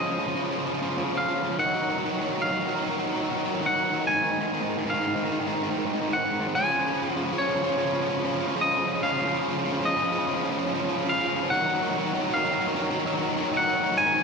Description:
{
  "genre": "rock",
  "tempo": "48 BPM (dotted quarters)",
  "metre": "6/8",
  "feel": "straight",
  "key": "Db major",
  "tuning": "A4 = 440 Hz",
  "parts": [
    { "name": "twangy electric guitar", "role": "melody", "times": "0.0-14.2 s", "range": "Db5 to Ab5", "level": "-27 LUFS", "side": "left 1 dB", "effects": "slapback echo, digital delay" },
    { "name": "crunchy overdriven guitar", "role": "riff", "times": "0.0-14.2 s", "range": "Ab2 to Gb3", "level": "-26 LUFS", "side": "equal", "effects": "slapback echo" }
  ],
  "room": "wet recital hall reverb, RT60 1.6 s, digital ambience",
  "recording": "big arena sound",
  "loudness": "-23 LUFS",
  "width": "side -4 dB against mid",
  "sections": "0.0-14.2 A section",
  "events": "build-up 0.0-14.2",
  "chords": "0.0 Dbadd9; 1.6 Ebm; 4.1 Ab5; 6.6 Dbadd9; 11.5 Ebm"
}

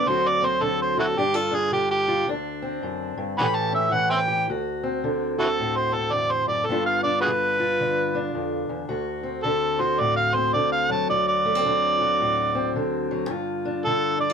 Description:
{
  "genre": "acoustic country blues, solo or duo",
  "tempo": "109 BPM",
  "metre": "4/4",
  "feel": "swing 62% on 8ths",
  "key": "D mixolydian",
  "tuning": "A4 = 440 Hz",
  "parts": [
    { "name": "overdriven harmonica", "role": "melody", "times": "0.0-14.3 s", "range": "E4 to B5", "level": "-22 LUFS", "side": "right 1 dB", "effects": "none" },
    { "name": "fingerpicked steel-string acoustic guitar", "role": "accompaniment", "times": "0.0-14.3 s", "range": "D2 to G4", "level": "-26 LUFS", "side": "left 1 dB", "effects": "none" }
  ],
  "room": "light reverb",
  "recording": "close, detailed microphones",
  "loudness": "-21 LUFS",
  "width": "side -6 dB against mid",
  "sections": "0.0-4.5 A section; 4.5-14.3 A section",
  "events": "harmonica solo 0.0-4.5, 4.5-14.3",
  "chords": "0.1 D7; 1.2 G5; 2.3 D7; 3.4 A7; 4.5 D7; 6.7 G7; 8.9 D7; 13.3 G7(no3)"
}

